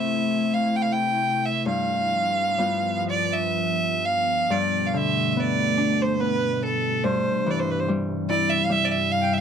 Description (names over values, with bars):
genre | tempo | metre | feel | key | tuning
celtic folk, Celtic slow air | 60-76 BPM | 3/4 | rubato | G mixolydian | A4 = 438 Hz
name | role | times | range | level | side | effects
clear fiddle | melody | 0.0-9.4 s | A4 to G5 | -23 LUFS | right 2 dB | none
Celtic harp | accompaniment | 0.0-9.4 s | G2 to F4 | -26 LUFS | left 4 dB | none
glassy FM pad | sustained chords | 0.0-9.4 s | G2 to E4 | -28 LUFS | right 1 dB | ensemble chorus, built-in reverb
room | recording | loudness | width
moderate booth ambience, RT60 0.2 s | dry, close 1970s-style studio recording | -21 LUFS | side -7 dB against mid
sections
0.0-4.5 A section; 4.5-9.4 B section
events
none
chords
0.0 C6; 1.7 G7; 4.5 Gadd9; 7.0 C/G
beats
0.74 | 1.65 2.58 3.56 | 4.50 5.37 6.20 | 7.04 7.86 8.68